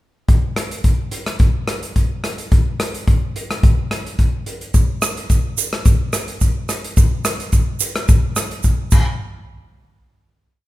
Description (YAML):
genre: calypso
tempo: 108 BPM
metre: 4/4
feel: swing 53% on 16ths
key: none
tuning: none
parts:
  - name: natural country drum kit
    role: drums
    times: 0.3-9.1 s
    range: crash cymbal, hi-hat, kick drum, rim click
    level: -16 LUFS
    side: equal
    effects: none
  - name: egg shaker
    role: percussion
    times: 4.7-9.2 s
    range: none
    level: -24 LUFS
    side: right 9 dB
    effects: none
room: light reverb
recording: none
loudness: -16 LUFS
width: side -16 dB against mid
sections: 0.3-9.2 verse; 9.2-10.7 final hit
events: none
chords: none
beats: | 0.28 0.84 1.40 1.96 | 2.52 3.07 3.63 4.19 | 4.74 5.30 5.86 6.41 | 6.97 7.53 8.09 8.64